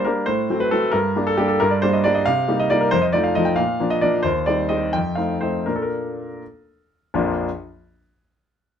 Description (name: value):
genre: classical-period piano sonatina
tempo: 80-92 BPM (dotted quarters)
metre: 6/8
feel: rubato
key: Bb major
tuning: A4 = 441 Hz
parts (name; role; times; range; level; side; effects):
- clear concert grand piano; solo; 0.0-7.5 s; Bb1 to G5; -18 LUFS; equal; none
room: light reverb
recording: none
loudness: -18 LUFS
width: side -8 dB against mid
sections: 0.0-7.1 A section; 7.1-8.5 B section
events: none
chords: 0.3 F#dim/A; 0.9 Gm; 2.3 Cm7; 2.9 F7; 3.6 Bb; 4.3 Cm/Eb; 4.9 F7; 5.7 Bb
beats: | 0.28 0.94 | 1.60 2.26 | 2.92 3.58 | 4.25 4.95 | 5.67 6.41 | 7.13